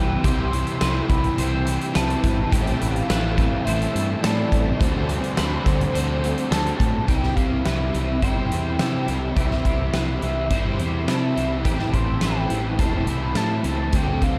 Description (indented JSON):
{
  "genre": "rock, shoegaze and dream pop",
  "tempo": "105 BPM",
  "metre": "4/4",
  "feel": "straight",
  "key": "C major",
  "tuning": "A4 = 439 Hz",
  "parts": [
    { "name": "mellow horn-like synth lead", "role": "melody", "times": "0.0-14.4 s", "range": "C5 to C6", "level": "-33 LUFS", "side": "equal", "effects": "chorus, slapback echo" },
    { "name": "brassy analog pad", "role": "sustained chords", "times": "0.0-14.4 s", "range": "G3 to E6", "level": "-37 LUFS", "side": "equal", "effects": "none" },
    { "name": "twelve-string electric guitar", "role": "arpeggios", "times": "0.0-14.4 s", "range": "G4 to B5", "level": "-38 LUFS", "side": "equal", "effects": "ensemble chorus, slapback echo" },
    { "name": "crunchy overdriven guitar", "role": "riff", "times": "0.0-14.4 s", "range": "A2 to F#4", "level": "-30 LUFS", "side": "equal", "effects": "reverse reverb" },
    { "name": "overdriven semi-hollow guitar", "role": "riff", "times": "0.0-14.4 s", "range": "A2 to F#4", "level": "-32 LUFS", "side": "equal", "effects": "ensemble chorus" },
    { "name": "growling fingered electric bass", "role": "bass", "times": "0.0-14.4 s", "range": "E1 to C3", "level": "-27 LUFS", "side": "equal", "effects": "overdrive" },
    { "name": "huge arena drum kit", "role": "drums", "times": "0.2-14.3 s", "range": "hi-hat, kick drum, snare drum", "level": "-27 LUFS", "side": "equal", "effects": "none" }
  ],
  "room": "studio ambience",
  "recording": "dark, warm production",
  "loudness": "-22 LUFS",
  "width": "mono",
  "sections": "0.0-7.1 A section; 7.1-14.4 B section",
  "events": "none",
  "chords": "0.0 Cmaj7; 2.5 Am9; 4.8 D7sus4; 7.1 Cmaj7; 11.7 Am9"
}